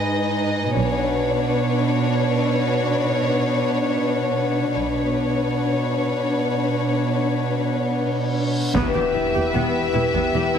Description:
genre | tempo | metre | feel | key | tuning
cinematic, suspense film score | 75 BPM | 5/4 | straight | unclear | A4 = 436 Hz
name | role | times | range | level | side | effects
rich studio violin section | melody | 0.0-10.6 s | C#5 to E5 | -26 LUFS | left 3 dB | none
warm studio violin section | second line | 0.0-10.6 s | D4 to B4 | -25 LUFS | left 3 dB | none
glass harmonica | sustained chords | 0.0-10.6 s | D4 to G#5 | -27 LUFS | left 2 dB | none
dark studio cello section | bass | 0.0-10.6 s | E2 to B2 | -24 LUFS | right 4 dB | none
large celesta | texture | 0.0-10.6 s | B4 to E5 | -35 LUFS | left 3 dB | none
warm studio double bass section | bass | 0.7-10.4 s | E1 to B1 | -28 LUFS | right 5 dB | none
reverse cymbal and impact | sound effects | 8.3-10.6 s | none | -31 LUFS | right 1 dB | none
warm studio viola section | accompaniment | 8.7-10.6 s | B3 to G4 | -27 LUFS | right 2 dB | none
warm French horn section | sustained chords | 8.7-10.6 s | B3 to G4 | -28 LUFS | left 2 dB | none
concert harp | riff | 8.7-10.6 s | E2 | -25 LUFS | left 8 dB | none
solo taiko drums | drums | 8.7-10.6 s | none | -33 LUFS | equal | none
room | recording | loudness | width
light reverb | heavily compressed radio sound, multiband compression | -19 LUFS | side -8 dB against mid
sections
0.0-8.7 A section; 8.7-10.6 B section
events
reverse cymbal 8.3-8.7; impact 8.7-10.6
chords
0.0 G#m; 0.7 Bmadd9; 8.7 Em

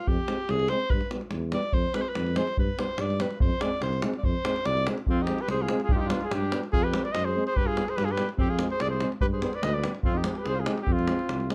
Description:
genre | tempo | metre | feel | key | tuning
balkan folk, Balkan brass band | 145 BPM | 2/4 | swing 53% on 16ths | F dorian sharp4 | A4 = 440 Hz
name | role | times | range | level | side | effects
warm alto saxophone | second line | 0.0-11.5 s | C4 to D5 | -34 LUFS | equal | none
mellow tuba | bass | 0.1-11.5 s | C2 to G2 | -33 LUFS | equal | none
davul | percussion | 0.1-11.5 s | none | -32 LUFS | equal | none
warm euphonium | accompaniment | 0.3-11.5 s | B3 to C4 | -37 LUFS | equal | none
warm euphonium | accompaniment | 0.3-11.5 s | G3 to Ab3 | -38 LUFS | equal | none
mellow cornet | melody | 5.1-11.5 s | F4 to Eb5 | -33 LUFS | equal | none
room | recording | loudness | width
light reverb | close, detailed microphones | -27 LUFS | mono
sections
0.0-5.1 A section; 5.1-11.5 B section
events
alto saxophone solo 0.0-5.1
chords
0.1 Fm; 0.9 G; 1.7 Fm; 2.6 G; 3.4 Fm; 5.9 G; 6.7 Fm; 7.6 G; 8.4 Fm; 9.2 G; 10.0 Fm

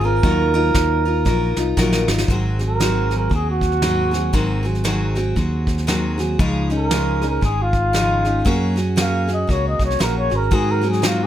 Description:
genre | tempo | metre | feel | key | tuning
acoustic folk duo or small band | 117 BPM | 4/4 | swing 60% on 8ths | unclear | A4 = 440 Hz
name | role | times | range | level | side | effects
warm flugelhorn | melody | 0.0-11.3 s | F4 to F5 | -22 LUFS | right 2 dB | none
picked steel-string acoustic guitar | accompaniment | 0.0-11.3 s | Ab2 to Bb4 | -22 LUFS | left 2 dB | none
fingered electric bass | bass | 0.0-11.3 s | Ab1 to Ab2 | -21 LUFS | equal | none
soft brush drum kit | drums | 0.2-11.2 s | kick drum, snare drum | -22 LUFS | equal | none
room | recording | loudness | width
light reverb | none | -16 LUFS | side -11 dB against mid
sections
0.0-2.3 A section; 2.3-11.3 B section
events
drum fill 1.3-2.3; flugelhorn solo 2.3-11.3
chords
0.2 Ebmadd9; 2.3 Ab7; 6.4 Dbadd9; 8.5 Gbadd9; 10.5 Ab7

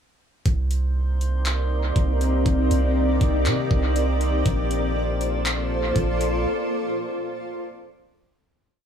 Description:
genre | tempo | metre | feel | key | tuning
hip hop, atmospheric cloud-rap | 120 BPM | 4/4 | half-time | C dorian | A4 = 441 Hz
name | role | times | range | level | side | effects
granular cloud pad | sustained chords | 1.4-8.4 s | Bb3 to D5 | -24 LUFS | equal | built-in reverb, sidechain pumping
long sustained 808-style bass | bass | 0.5-6.5 s | Bb1 to C3 | -23 LUFS | right 1 dB | none
smooth R&B drum kit | drums | 0.5-6.3 s | handclaps, hi-hat, kick drum | -25 LUFS | equal | analog delay
drifting glass-harmonics texture | texture | 0.8-8.4 s | Bb3 to D5 | -34 LUFS | equal | chorus, built-in reverb
room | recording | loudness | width
light reverb | echo-heavy mix | -20 LUFS | side -8 dB against mid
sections
0.5-8.5 verse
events
break 6.5-8.5; fade-out 6.5-8.5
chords
0.5 Cm7; 4.5 Bbmaj7

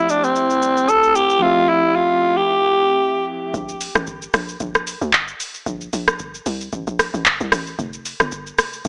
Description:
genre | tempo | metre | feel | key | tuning
amapiano | 113 BPM | 4/4 | swing 55% on 16ths | unclear | A4 = 442 Hz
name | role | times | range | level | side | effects
raspy alto saxophone | melody | 0.0-3.3 s | C4 to A4 | -18 LUFS | equal | tape echo
FM electric piano with soft pad layer | accompaniment | 0.0-3.6 s | F3 to E5 | -28 LUFS | equal | chorus, tremolo
booming analog drum machine | drums | 0.1-8.9 s | handclaps, hi-hat, kick drum, rim click, shaker | -22 LUFS | equal | none
hollow log drum bass | bass | 3.5-8.9 s | F1 to D2 | -29 LUFS | equal | none
room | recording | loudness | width
light reverb | small speaker sound | -19 LUFS | mono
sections
0.0-3.5 A section; 3.5-8.9 B section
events
drop 3.5-8.9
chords
0.0 Fmaj9; 3.5 Bbmaj7(no3); 7.8 Fsus2

